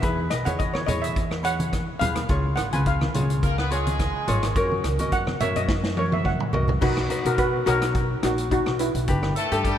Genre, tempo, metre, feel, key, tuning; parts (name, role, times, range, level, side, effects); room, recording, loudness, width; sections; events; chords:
calypso; 106 BPM; 4/4; swing 54% on 16ths; B major; A4 = 440 Hz
steel pan; melody; 0.0-9.3 s; D#4 to G#5; -26 LUFS; equal
ukulele; accompaniment; 0.0-9.8 s; D4 to D#5; -29 LUFS; left 2 dB
upright bass; bass; 0.0-9.8 s; G1 to B2; -26 LUFS; equal
vintage drum kit; drums; 0.0-9.8 s; crash cymbal, hi-hat, kick drum, rim click, snare drum, toms; -28 LUFS; equal
congas; percussion; 0.5-6.8 s; -32 LUFS; right 2 dB
brilliant horn section; second line; 3.4-4.8, 9.4-9.8 s; G3 to B4; -29 LUFS; equal
moderate concert hall reverb, RT60 2.5 s; -21 LUFS; side -10 dB against mid
0.0-6.8 A section; 6.8-9.8 B section
steel pan solo 0.0-6.8; drum fill 5.7-6.8
0.0 E; 2.3 C#; 4.6 F#; 6.8 Bmaj7; 9.1 G6